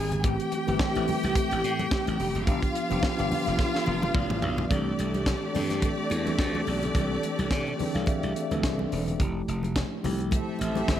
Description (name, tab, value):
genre	disco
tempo	107 BPM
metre	4/4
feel	swing 56% on 16ths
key	C major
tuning	A4 = 435 Hz
part	clear studio string section	second line	0.0-11.0 s	A3 to Ab5	-31 LUFS	right 1 dB	none
part	mellow tine electric piano	accompaniment	0.0-11.0 s	Eb3 to G5	-30 LUFS	left 1 dB	medium stereo tremolo
part	glassy slap bass	bass	0.0-11.0 s	E1 to C3	-30 LUFS	equal	none
part	tight funk drum kit	drums	0.1-11.0 s	hi-hat, kick drum, snare drum, toms	-29 LUFS	equal	gated reverb
part	congas	percussion	0.1-10.9 s	none	-37 LUFS	left 4 dB	none
room	small room ambience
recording	none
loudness	-24 LUFS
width	side -11 dB against mid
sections	0.0-4.7 A section; 4.7-11.0 B section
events	drum fill 3.6-4.7; tine electric piano fill 3.6-4.7, 7.5-9.2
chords	0.2 Am7; 2.5 G7; 4.7 C69; 9.2 Fmaj9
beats	| 0.24 0.80 1.36 1.92 | 2.47 3.03 3.59 4.15 | 4.71 5.27 5.83 6.39 | 6.95 7.51 8.07 8.63 | 9.20 9.76 10.32 10.88